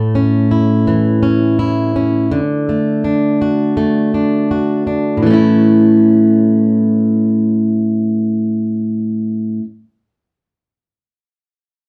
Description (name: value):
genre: pop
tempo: 83 BPM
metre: 4/4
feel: swing 55% on 16ths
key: A major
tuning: A4 = 440 Hz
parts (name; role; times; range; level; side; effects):
- fingerpicked plugged-in steel-string acoustic guitar; accompaniment; 0.0-9.7 s; A2 to F#4; -14 LUFS; equal; none
room: wet studio ambience, RT60 0.5 s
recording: heard from further back in the room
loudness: -14 LUFS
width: mono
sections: 0.0-5.2 A section; 5.2-8.1 B section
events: none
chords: 0.0 A; 2.3 D; 5.2 A